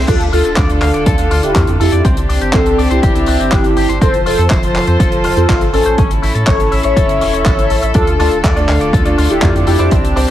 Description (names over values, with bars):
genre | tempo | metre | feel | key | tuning
italo disco | 122 BPM | 4/4 | straight | D minor | A4 = 439 Hz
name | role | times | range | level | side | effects
rich chamber string section | sustained chords | 0.0-10.3 s | D3 to C5 | -18 LUFS | equal | none
electric guitar with an envelope filter | arpeggios | 0.0-10.3 s | C4 to F5 | -23 LUFS | left 4 dB | digital delay
bright grand piano | stabs | 0.0-0.1, 8.2-10.3 s | G3 to D5 | -22 LUFS | right 1 dB | vintage 12-bit sampler grit, digital delay
round analog bass | bass | 0.0-10.3 s | D1 to A2 | -16 LUFS | equal | tube saturation
mellow synth brass | melody | 0.1-9.9 s | C4 to E5 | -16 LUFS | equal | chorus, digital delay
electronic kick drum | drums | 0.1-10.0 s | none | -15 LUFS | equal | overdrive, small room ambience
tight funk drum kit | drums | 0.1-10.3 s | crash cymbal, handclaps, hi-hat | -22 LUFS | left 1 dB | small room ambience
room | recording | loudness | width
light reverb, studio reverb | heavily compressed radio sound | -10 LUFS | side -12 dB against mid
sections
0.1-10.3 A section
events
none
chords
0.1 Dm; 2.0 Csus2; 4.0 F; 6.0 A; 7.9 Dm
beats
| 0.08 0.57 1.06 1.56 | 2.05 2.54 3.03 3.52 | 4.01 4.51 5.00 5.49 | 5.98 6.47 6.96 7.46 | 7.95 8.44 8.93 9.42 | 9.92